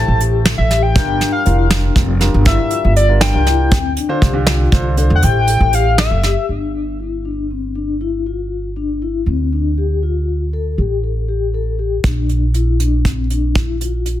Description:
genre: progressive instrumental, band music in an uneven meter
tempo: 238 BPM (eighths)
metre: 11/8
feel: straight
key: G dorian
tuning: A4 = 445 Hz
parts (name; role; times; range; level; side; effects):
- pulse-width lead; melody; 0.0-6.5 s; D5 to A5; -19 LUFS; left 2 dB; chorus, ping-pong delay
- dark concert grand piano; accompaniment; 0.0-6.1 s; D3 to C5; -23 LUFS; right 2 dB; none
- vibraphone with soft mallets; arpeggios; 0.0-14.2 s; C4 to A4; -22 LUFS; left 7 dB; ping-pong delay
- upright bass; bass; 0.0-14.2 s; F1 to E2; -16 LUFS; equal; none
- soft brush drum kit; drums; 0.2-6.4, 12.0-14.2 s; hi-hat, kick drum, snare drum; -17 LUFS; right 1 dB; soft clipping on kick, soft clipping on snare
room: little or no reverb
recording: dense, heavily limited modern master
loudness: -14 LUFS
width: side -13 dB against mid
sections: 0.0-6.5 A section; 6.5-14.2 B section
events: analog synth lead solo 0.0-6.5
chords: 0.0 Am7; 1.0 Gm7; 3.7 Dm7; 5.2 Am7; 6.5 G5; 9.3 Dm7; 10.8 Gsus2/A; 12.0 Bb

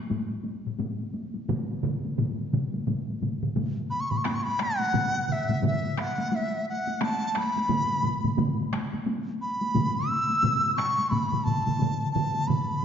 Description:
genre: japanese traditional, taiko drum ensemble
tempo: 87 BPM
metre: 4/4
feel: swing 60% on 16ths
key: B suspended pentatonic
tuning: A4 = 440 Hz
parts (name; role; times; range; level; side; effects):
- taiko ensemble; percussion; 0.1-12.8 s; none; -32 LUFS; left 1 dB; none
- taiko ensemble; percussion; 0.1-12.7 s; none; -32 LUFS; left 5 dB; none
- taiko ensemble; percussion; 1.5-12.7 s; none; -30 LUFS; right 4 dB; none
- mellow dizi; melody; 3.9-12.8 s; E5 to E6; -27 LUFS; equal; none
room: wet concert hall reverb, RT60 1.7 s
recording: nothing above 7.5 kHz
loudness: -25 LUFS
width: side -8 dB against mid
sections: 0.0-4.3 A section; 4.3-12.8 B section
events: none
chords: none

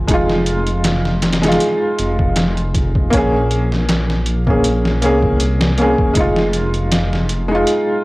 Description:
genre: trip hop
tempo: 79 BPM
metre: 4/4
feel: swing 54% on 16ths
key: F minor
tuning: A4 = 442 Hz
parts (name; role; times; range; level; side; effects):
- felt-muted upright piano; accompaniment; 0.0-8.0 s; Ab3 to Ab4; -17 LUFS; equal; tremolo, tape echo
- dark detuned saw bass; bass; 0.1-7.6 s; F1 to C2; -18 LUFS; equal; tube saturation
- trip hop sampler-style drum kit; drums; 0.1-7.9 s; hi-hat, kick drum, snare drum; -18 LUFS; equal; overdrive
room: little or no reverb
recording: dry, gritty hardware recording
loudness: -13 LUFS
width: side -21 dB against mid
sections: 0.0-8.0 A section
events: none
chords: 0.1 Fm7; 3.1 Bbm7; 6.2 Fm7

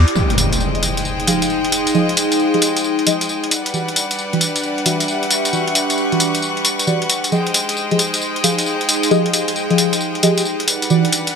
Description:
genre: UK garage, two-step garage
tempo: 134 BPM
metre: 4/4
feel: swing 65% on 16ths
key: unclear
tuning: A4 = 440 Hz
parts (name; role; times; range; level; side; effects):
- warbly tape-like pad; texture; 0.0-11.4 s; D4 to F5; -22 LUFS; equal; chorus, built-in reverb, phaser
- electronic hi-hat and tambourine; drums; 0.1-11.3 s; none; -19 LUFS; left 1 dB; none
- clear chamber violin section; sustained chords; 0.2-11.4 s; G3 to Db6; -22 LUFS; left 1 dB; none
- deep mellow chord stab; stabs; 0.2-11.0 s; E3 to F5; -20 LUFS; right 1 dB; chorus, phaser, ping-pong delay
- impact; sound effects; 0.2-1.9 s; none; -20 LUFS; equal; none
room: moderate lush hall reverb, RT60 2.1 s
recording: none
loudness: -15 LUFS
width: side -6 dB against mid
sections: 0.2-11.4 A section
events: drum fill 0.0; band accent 0.0; impact 0.2-1.9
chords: 0.2 Fm7; 3.5 Em7; 7.3 Fm7; 10.7 Em7

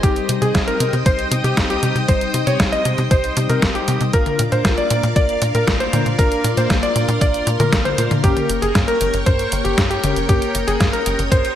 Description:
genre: italo disco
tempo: 117 BPM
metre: 4/4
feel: straight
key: unclear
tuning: A4 = 440 Hz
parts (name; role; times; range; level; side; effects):
- warm electric grand piano; melody; 0.0-11.6 s; G4 to Eb5; -21 LUFS; equal; ping-pong delay
- string machine, full ensemble; sustained chords; 0.0-11.6 s; Bb4 to Eb6; -25 LUFS; equal; ensemble chorus
- mellow synth brass; stabs; 0.0-11.6 s; G3 to Bb4; -25 LUFS; left 3 dB; chorus, vintage 12-bit sampler grit
- tight sequencer bass; bass; 0.0-11.4 s; G1 to C3; -21 LUFS; equal; none
- detuned 8-bit digital drum machine; drums; 0.0-11.5 s; hi-hat, snare drum, toms; -22 LUFS; equal; gated reverb
- electronic kick drum; drums; 0.0-11.4 s; none; -19 LUFS; equal; none
room: light reverb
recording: none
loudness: -15 LUFS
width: side -10 dB against mid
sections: 0.0-11.6 A section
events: none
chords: 0.0 Cm; 4.1 Bb; 8.2 Gdim

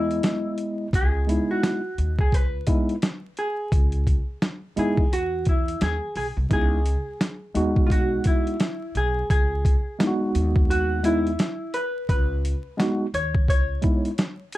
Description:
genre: hip hop, jazz-hop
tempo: 86 BPM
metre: 4/4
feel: swing 60% on 16ths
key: C# minor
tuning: A4 = 440 Hz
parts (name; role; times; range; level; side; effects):
- hollow-body jazz guitar; melody; 0.0-14.6 s; E4 to C#5; -28 LUFS; equal; slapback echo
- tine electric piano; accompaniment; 0.0-14.1 s; G#3 to D#5; -24 LUFS; equal; fast stereo tremolo
- upright bass; bass; 0.0-13.8 s; B1 to E2; -26 LUFS; equal; none
- boom bap sampler-style drum kit; drums; 0.1-14.6 s; hi-hat, kick drum, snare drum; -22 LUFS; equal; none
room: light reverb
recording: dark, warm production, vinyl crackle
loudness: -21 LUFS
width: side -16 dB against mid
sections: 0.0-14.6 A section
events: none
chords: 0.0 C#m9

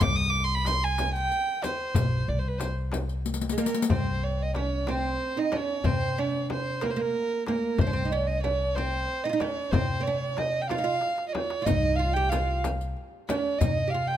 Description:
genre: Arabic maqam ensemble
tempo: 62 BPM (dotted quarters)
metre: 6/8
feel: straight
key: C maqam bayati from 3.9 s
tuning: A4 = 439 Hz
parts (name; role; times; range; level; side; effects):
- dark violin; melody; 0.0-14.2 s; Bb4 to Eb6; -29 LUFS; right 2 dB; none
- upright bass; bass; 0.0-14.2 s; B1 to C3; -30 LUFS; left 1 dB; none
- darbuka; percussion; 0.0-13.8 s; none; -32 LUFS; left 3 dB; none
- frame drum; percussion; 0.0-13.8 s; none; -33 LUFS; left 2 dB; none
- riq; percussion; 0.0-3.9, 11.7-13.8 s; none; -33 LUFS; left 8 dB; none
- oud; second line; 3.5-14.2 s; Ab3 to G4; -31 LUFS; right 4 dB; none
room: light reverb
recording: close, detailed microphones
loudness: -25 LUFS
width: side -11 dB against mid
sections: 0.0-3.9 A section; 3.9-14.2 B section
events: drum fill 3.3-3.9, 11.0-11.7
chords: none

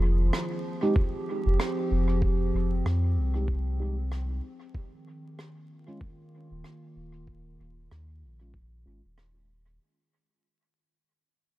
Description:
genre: ambient dub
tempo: 95 BPM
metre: 4/4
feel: swing 58% on 16ths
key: unclear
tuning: A4 = 438 Hz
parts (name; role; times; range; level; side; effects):
- warbly tape-like pad; sustained chords; 0.0-9.8 s; Eb3 to Ab4; -34 LUFS; right 1 dB; chorus, built-in reverb
- soft dub sub bass; bass; 0.0-9.8 s; Eb1 to F2; -26 LUFS; equal; none
- rim click; drums; 0.3-9.3 s; none; -37 LUFS; right 1 dB; dub echo
- mellow tine electric piano; stabs; 0.8-9.0 s; Ab3 to G4; -31 LUFS; right 2 dB; lush chorus, low-pass filter, dub echo
- electronic kick drum; drums; 1.0-8.7 s; none; -27 LUFS; equal; overdrive
room: studio reverb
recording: dark, warm production, vinyl crackle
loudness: -25 LUFS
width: side -16 dB against mid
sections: 0.0-9.8 A section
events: fade-out 0.0-9.8; filter sweep on tine electric piano 0.0-9.8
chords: 0.0 Fm; 4.7 Ebsus4

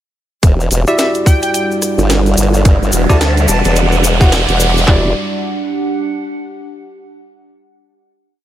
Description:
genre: glitch hop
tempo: 108 BPM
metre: 4/4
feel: swing 59% on 16ths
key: E minor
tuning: A4 = 441 Hz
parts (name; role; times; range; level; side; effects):
- dark analog pad; sustained chords; 0.4-5.1 s; G3 to F#5; -23 LUFS; left 1 dB; chorus, sidechain pumping
- formant-sweep wobble bass; bass; 0.4-5.1 s; E1 to D2; -13 LUFS; equal; chorus, tube saturation
- drum and bass drum kit; drums; 0.4-5.0 s; handclaps, kick drum; -9 LUFS; equal; overdrive, studio reverb
- drum and bass drum kit; drums; 0.4-4.7 s; hi-hat, rim click, snare drum; -20 LUFS; right 1 dB; overdrive, high-pass filter on hats, studio reverb, high-pass filter on snare
- cabasa; percussion; 0.4-4.9 s; none; -22 LUFS; left 2 dB; none
- riser; sound effects; 2.0-4.9 s; none; -21 LUFS; right 3 dB; none
- warbly tape-like pad; texture; 1.2-7.1 s; G3 to F#5; -22 LUFS; right 3 dB; chorus, built-in reverb, phaser, sidechain pumping
- sync lead; melody; 0.9-3.7 s; E5 to A5; -21 LUFS; equal; analog chorus, digital delay
- bell-like tine electric piano; stabs; 0.9-5.1 s; E4 to F#5; -19 LUFS; equal; vintage 12-bit sampler grit, sidechain pumping, digital delay
room: light reverb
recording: none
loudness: -11 LUFS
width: side -12 dB against mid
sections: 0.4-4.9 build; 4.9-7.1 final chord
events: build-up 0.4-4.9; filter sweep on analog synth pad 0.4-4.9; riser 2.0-4.9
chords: 0.4 Em9

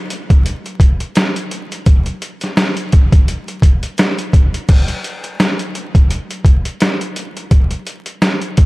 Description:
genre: hip hop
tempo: 85 BPM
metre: 4/4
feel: swing 57% on 16ths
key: none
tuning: none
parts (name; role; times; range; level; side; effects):
- trip hop sampler-style drum kit; drums; 0.1-8.7 s; crash cymbal, hi-hat, kick drum, snare drum; -12 LUFS; equal; none
room: light reverb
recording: vinyl crackle, lossy compression artefacts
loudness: -12 LUFS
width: side -21 dB against mid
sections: 0.0-4.7 A section; 4.7-8.7 B section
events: none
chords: none

